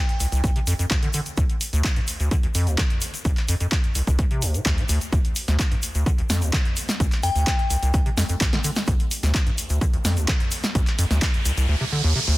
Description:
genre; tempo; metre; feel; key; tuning
acid house; 128 BPM; 4/4; straight; D phrygian; A4 = 444 Hz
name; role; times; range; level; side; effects
glassy synth bell; melody; 0.0-0.4, 7.2-7.9 s; G5; -30 LUFS; left 3 dB; chorus, phaser, digital delay
punchy analog drum machine; drums; 0.1-11.7 s; handclaps, hi-hat, snare drum; -27 LUFS; equal; none
acid bass, square; riff; 0.2-12.4 s; C2 to D3; -24 LUFS; equal; overdrive, lush chorus, sidechain pumping, digital delay
egg shaker; percussion; 0.2-11.7 s; none; -33 LUFS; left 3 dB; none
electronic kick drum; drums; 0.4-11.3 s; none; -22 LUFS; equal; none
riser; sound effects; 10.3-12.4 s; none; -28 LUFS; right 2 dB; none
room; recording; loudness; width
light reverb, digital ambience; dense, heavily limited modern master; -20 LUFS; side -18 dB against mid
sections
0.0-12.4 A section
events
riser 10.3-12.4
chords
0.0 Dm

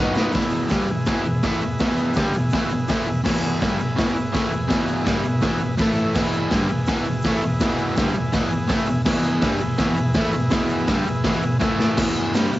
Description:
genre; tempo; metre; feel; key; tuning
garage rock duo or trio; 165 BPM; 4/4; straight; E major; A4 = 439 Hz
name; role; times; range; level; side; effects
combo organ; sustained chords; 0.0-12.0 s; E4 to E5; -29 LUFS; equal; cassette tape
overdriven electric guitar; riff; 0.0-12.6 s; E2 to D#4; -21 LUFS; equal; cassette tape
egg shaker; percussion; 0.1-12.6 s; none; -48 LUFS; right 2 dB; none
raw garage drum kit; drums; 0.2-12.4 s; crash cymbal, hi-hat, kick drum, snare drum; -22 LUFS; equal; cassette tape
room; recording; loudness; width
light reverb, studio ambience; home recording on cassette, nothing above 7.8 kHz; -19 LUFS; side -16 dB against mid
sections
0.4-12.0 A section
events
drum fill 0.0-0.4, 11.6-12.0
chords
0.4 E; 5.8 A5; 6.2 E; 11.6 A5; 12.0 E5

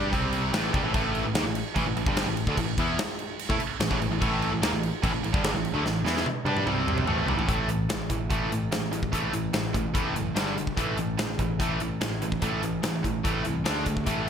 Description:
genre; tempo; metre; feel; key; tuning
hard rock; 146 BPM; 4/4; straight; A minor; A4 = 440 Hz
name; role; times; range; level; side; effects
crunchy overdriven guitar; riff; 0.0-14.3 s; G2 to G4; -31 LUFS; left 9 dB; ensemble chorus
tight distorted guitar; riff; 0.0-14.3 s; G2 to G4; -30 LUFS; right 9 dB; distortion
picked electric bass; bass; 0.0-14.3 s; F#1 to A2; -32 LUFS; equal; none
huge arena drum kit; drums; 0.1-14.2 s; crash cymbal, hi-hat, kick drum, snare drum, toms; -29 LUFS; equal; none
room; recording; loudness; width
light reverb, studio ambience; bright 1980s-style digital production; -24 LUFS; side -8 dB against mid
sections
0.0-7.5 A section; 7.5-14.3 B section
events
drum fill 5.8-7.5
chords
0.1 C5; 0.5 A5; 6.7 C5; 7.1 Am; 7.5 A5; 10.4 G5; 10.8 A5; 13.7 D5

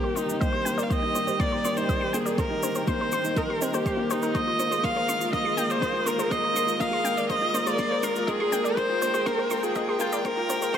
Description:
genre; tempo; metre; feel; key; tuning
piano and strings electronica; 122 BPM; 4/4; straight; unclear; A4 = 441 Hz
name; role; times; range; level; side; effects
rich viola; melody; 0.0-10.8 s; Eb4 to F5; -26 LUFS; right 1 dB; none
dark string quartet; sustained chords; 0.0-10.8 s; Eb3 to G5; -34 LUFS; right 2 dB; none
analog pluck; arpeggios; 0.0-10.8 s; C4 to C6; -34 LUFS; left 2 dB; chorus, sidechain pumping, digital delay
dark upright piano; riff; 0.0-10.8 s; Bb3 to Eb5; -29 LUFS; left 2 dB; none
shaker; drums; 0.2-10.8 s; none; -37 LUFS; right 2 dB; none
electronic kick drum; drums; 0.4-10.8 s; none; -30 LUFS; equal; none
room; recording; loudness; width
moderate huge ambient reverb, RT60 3.9 s; high-pass filter; -23 LUFS; side -8 dB against mid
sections
0.0-10.8 A section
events
build-up 0.0-10.8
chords
0.0 Cm7; 4.4 Bb7sus4

